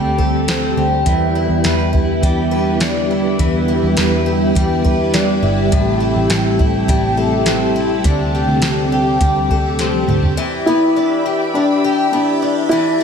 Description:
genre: dream pop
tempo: 103 BPM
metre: 4/4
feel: straight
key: E minor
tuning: A4 = 437 Hz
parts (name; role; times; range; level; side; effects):
- ensemble organ-string; sustained chords; 0.0-13.0 s; C3 to B5; -18 LUFS; right 1 dB; ensemble chorus
- picked twelve-string acoustic guitar; arpeggios; 0.0-13.0 s; A2 to B4; -19 LUFS; left 2 dB; lush chorus, ping-pong delay
- vintage muted picked electric bass; bass; 0.0-10.4 s; G1 to E2; -20 LUFS; right 1 dB; none
- soft vintage rhythm box; drums; 0.2-10.4 s; hi-hat, kick drum, snare drum, toms; -18 LUFS; equal; none
- felt-muted upright piano; melody; 10.7-13.0 s; D4 to E4; -15 LUFS; left 1 dB; ping-pong delay
room: moderate scoring stage reverb, RT60 1.7 s, digital ambience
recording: none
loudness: -13 LUFS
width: side -6 dB against mid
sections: 0.0-10.4 A section; 10.4-13.0 B section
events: drum fill 9.8-10.4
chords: 0.0 D7sus4; 1.1 Em7; 5.7 Am7; 8.1 D7sus4; 10.4 Em7

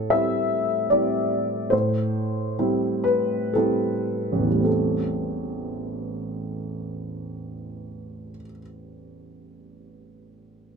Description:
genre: neoclassical minimalist piano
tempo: 53-77 BPM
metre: 3/4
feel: rubato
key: A minor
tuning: A4 = 436 Hz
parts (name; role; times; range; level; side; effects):
- felt-muted upright piano; solo; 0.0-10.8 s; A1 to E5; -23 LUFS; equal; none
room: light reverb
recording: close, detailed microphones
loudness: -22 LUFS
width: side -5 dB against mid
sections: 0.0-4.7 A section; 4.7-10.8 B section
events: slowing down 0.0-4.7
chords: 0.0 Am7

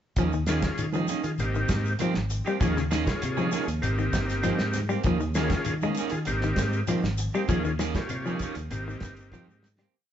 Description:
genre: afrobeat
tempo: 98 BPM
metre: 4/4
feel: straight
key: Eb mixolydian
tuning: A4 = 440 Hz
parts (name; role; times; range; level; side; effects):
- semi-hollow electric guitar; arpeggios; 0.2-9.9 s; Db3 to Ab3; -30 LUFS; left 3 dB; none
- electric guitar at the edge of break-up; stabs; 0.2-9.9 s; Eb3 to Ab4; -32 LUFS; right 6 dB; none
- fingered electric bass; bass; 0.2-9.8 s; G1 to Eb3; -30 LUFS; equal; none
- damped 70s drum kit; drums; 0.2-9.9 s; hi-hat, kick drum, snare drum; -31 LUFS; equal; none
- congas; percussion; 0.2-9.5 s; none; -38 LUFS; right 4 dB; none
- shekere; percussion; 0.2-9.9 s; none; -39 LUFS; left 3 dB; none
- combo organ; accompaniment; 0.5-9.7 s; Bb3 to Db5; -32 LUFS; left 1 dB; none
- claves; percussion; 0.5-9.9 s; none; -43 LUFS; right 1 dB; none
room: moderate large studio reverb, RT60 1.1 s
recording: band playing live in one room, nothing above 7.8 kHz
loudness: -24 LUFS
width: side -10 dB against mid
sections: 0.2-9.9 groove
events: fade-out 7.5-9.9; drum fill 9.3-9.9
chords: 0.2 Eb7sus4; 1.4 Abmaj9; 2.6 Eb7sus4; 3.8 Abmaj9; 5.1 Eb7sus4; 6.3 Abmaj9; 7.5 Eb7sus4; 8.7 Abmaj9

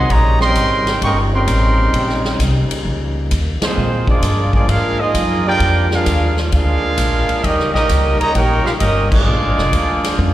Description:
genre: jazz, big band swing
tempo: 131 BPM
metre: 4/4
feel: swing 67% on 8ths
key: Eb major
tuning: A4 = 440 Hz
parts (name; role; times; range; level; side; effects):
- warm trumpet section; melody; 0.0-10.3 s; Bb3 to Db6; -18 LUFS; right 1 dB; slapback echo
- warm trombone section; second line; 0.0-10.3 s; Db3 to G4; -23 LUFS; right 2 dB; slapback echo
- mellow saxophone section; sustained chords; 0.0-10.3 s; Db3 to F4; -27 LUFS; left 2 dB; none
- upright bass; bass; 0.0-10.3 s; F1 to Bb2; -17 LUFS; equal; none
- swinging big-band drum kit; drums; 0.1-10.3 s; crash cymbal, hi-hat, kick drum, ride cymbal, snare drum, toms; -22 LUFS; equal; none
room: small room ambience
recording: live gig heard through the venue's PA, recital hall reverb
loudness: -13 LUFS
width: side -14 dB against mid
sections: 0.0-10.3 A section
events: band accent 3.5, 9.0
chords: 0.1 Eb7; 3.8 Bb7; 7.4 Eb7; 9.3 Bb7

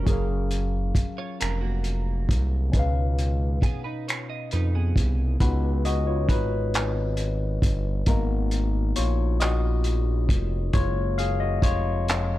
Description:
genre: slow six-eight R&B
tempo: 45 BPM (dotted quarters)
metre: 6/8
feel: straight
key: unclear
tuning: A4 = 439 Hz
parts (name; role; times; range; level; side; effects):
- semi-hollow electric guitar; second line; 0.0-5.4 s; A#3 to D#5; -36 LUFS; right 7 dB; analog chorus
- barky tine electric piano; accompaniment; 0.0-12.4 s; B2 to E#5; -30 LUFS; left 4 dB; overdrive, phaser
- smooth gliding synth bass; bass; 0.0-12.4 s; E#1 to E#2; -24 LUFS; equal; none
- cloth-damped thuddy drum kit; drums; 0.1-12.3 s; finger snaps, handclaps, hi-hat, kick drum; -24 LUFS; equal; none
room: small room reverb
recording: dark, warm production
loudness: -22 LUFS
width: side -15 dB against mid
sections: 0.0-5.4 A section; 5.4-12.4 B section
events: tine electric piano solo 5.4-12.4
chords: 0.1 F#maj7; 2.7 C#9; 5.4 C#7sus4; 8.1 G#m9; 10.7 F#maj7

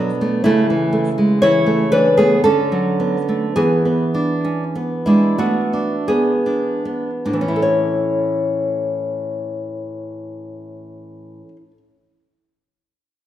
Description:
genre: classical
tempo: 38-62 BPM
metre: 3/4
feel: rubato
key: A major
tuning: A4 = 440 Hz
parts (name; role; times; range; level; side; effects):
- nylon-string guitar; accompaniment; 0.0-11.8 s; A2 to C#5; -16 LUFS; equal; none
room: wet recital hall reverb, RT60 1.5 s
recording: recorded in a church or concert hall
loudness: -15 LUFS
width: side -12 dB against mid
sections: 0.0-7.7 A section; 7.7-12.3 B section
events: slowing down 0.0-7.7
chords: 0.4 A/C#; 2.4 Bm/D; 3.6 E7; 7.7 A

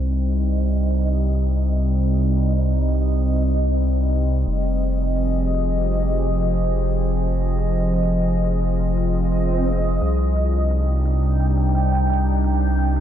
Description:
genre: half-time drum and bass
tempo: 173 BPM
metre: 4/4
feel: swing 57% on 16ths, half-time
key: C minor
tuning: A4 = 439 Hz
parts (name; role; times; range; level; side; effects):
- bowed-like drone; sustained chords; 0.0-13.0 s; C3 to Ab4; -23 LUFS; equal; built-in reverb
- saturated sub bass; bass; 0.0-13.0 s; F1 to C2; -20 LUFS; equal; none
- backwards swelling texture; texture; 0.4-13.0 s; Eb5 to G5; -29 LUFS; equal; built-in reverb
- electronic hi-hat; drums; 0.1-13.0 s; none; -55 LUFS; left 2 dB; none
- swell; sound effects; 9.4-10.0 s; none; -27 LUFS; right 1 dB; none
room: little or no reverb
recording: low-pass filter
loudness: -18 LUFS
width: side -10 dB against mid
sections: 0.0-13.0 A section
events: filter sweep 0.0-13.0; swell 9.4-10.0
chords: 0.0 Cm; 4.5 Fm; 10.0 Cm

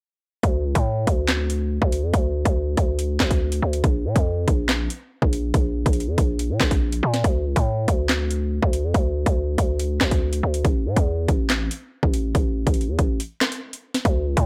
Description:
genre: hip hop, drill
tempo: 141 BPM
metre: 4/4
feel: half-time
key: D harmonic minor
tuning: A4 = 440 Hz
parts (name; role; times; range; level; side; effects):
- growling 808-style bass; bass; 0.4-14.5 s; A1 to Bb2; -25 LUFS; equal; none
- drill drum kit; drums; 0.4-14.5 s; handclaps, hi-hat, kick drum, rim click, snare drum; -24 LUFS; equal; overdrive
room: digital ambience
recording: blown-out, overdriven recording, overdrive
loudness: -22 LUFS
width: mono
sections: 0.4-14.1 A section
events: break 13.2-14.1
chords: none

